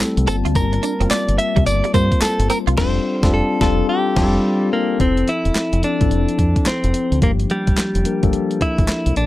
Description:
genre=R&B, new jack swing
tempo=108 BPM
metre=4/4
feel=swing 63% on 16ths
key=unclear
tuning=A4 = 437 Hz
part: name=mellow tine electric piano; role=accompaniment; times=0.0-9.3 s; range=F3 to A5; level=-21 LUFS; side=moving between left 7 dB and left 1 dB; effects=auto-pan
part: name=direct-recorded clean electric guitar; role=riff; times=0.0-2.7 s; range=G3 to F4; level=-25 LUFS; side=right 8 dB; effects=ensemble chorus
part: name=crisp 8-bit digital drum machine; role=drums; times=0.0-9.3 s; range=crash cymbal, handclaps, hi-hat, kick drum, snare drum, tambourine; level=-20 LUFS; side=equal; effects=none
part: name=deep dub fingered electric bass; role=bass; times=0.2-9.3 s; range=E1 to G2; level=-19 LUFS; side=equal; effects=none
part: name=direct-recorded clean electric guitar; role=melody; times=0.3-9.3 s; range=G3 to E5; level=-21 LUFS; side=equal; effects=none
room=little or no reverb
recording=none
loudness=-15 LUFS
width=side -16 dB against mid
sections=0.0-5.0 A section; 5.0-9.3 B section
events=band accent 2.8-5.0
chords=0.3 Gm11; 2.8 F69; 5.0 Fmaj7; 7.2 Gm7

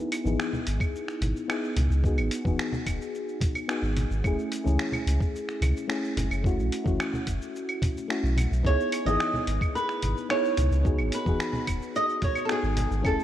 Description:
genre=sunset chillout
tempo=109 BPM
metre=4/4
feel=straight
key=C# minor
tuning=A4 = 439 Hz
part: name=mellow FM electric piano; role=accompaniment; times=0.0-13.2 s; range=A3 to G#4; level=-30 LUFS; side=left 1 dB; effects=chorus, auto-pan, low-pass filter, ping-pong delay
part: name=dusty soul sampler-style drum kit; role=drums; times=0.1-13.2 s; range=claves, finger snaps, hi-hat, shaker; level=-34 LUFS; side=right 1 dB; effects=studio reverb
part: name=warm sub bass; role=bass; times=0.2-13.2 s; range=D#1 to C#2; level=-26 LUFS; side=equal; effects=none
part: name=congas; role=percussion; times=0.3-12.9 s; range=none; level=-35 LUFS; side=left 1 dB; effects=none
part: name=electronic kick drum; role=drums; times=0.8-13.2 s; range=none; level=-28 LUFS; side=equal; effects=studio reverb
part: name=flamenco guitar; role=melody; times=8.7-13.2 s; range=G#4 to D#5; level=-28 LUFS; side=right 2 dB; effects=vintage 12-bit sampler grit, ping-pong delay
room=moderate lush hall reverb, RT60 2.6 s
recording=worn, warbling old tape, cassette tape, warbly pitch drift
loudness=-24 LUFS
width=side -12 dB against mid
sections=0.0-13.2 A section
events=filter sweep on FM electric piano 0.0-13.2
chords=0.0 C#m9; 2.0 G#m7; 4.2 F#m7; 6.4 B7sus4; 8.6 C#m9; 10.8 G#m7

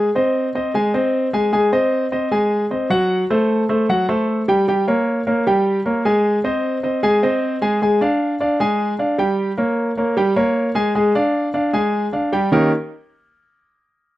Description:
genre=jazz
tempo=153 BPM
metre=4/4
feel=straight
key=unclear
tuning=A4 = 440 Hz
part: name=warm grand piano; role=solo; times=0.0-12.7 s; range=Eb3 to Ab5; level=-16 LUFS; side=equal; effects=none
room=little or no reverb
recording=recorded outdoors, with no room sound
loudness=-16 LUFS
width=side -15 dB against mid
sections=0.0-12.5 A section; 12.5-14.1 B section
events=none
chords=0.0 Ab7; 3.1 F#dim; 4.7 Gdim; 6.2 Ab; 7.8 Fm69; 9.4 Gdim; 11.0 Fm69; 12.5 Eb7

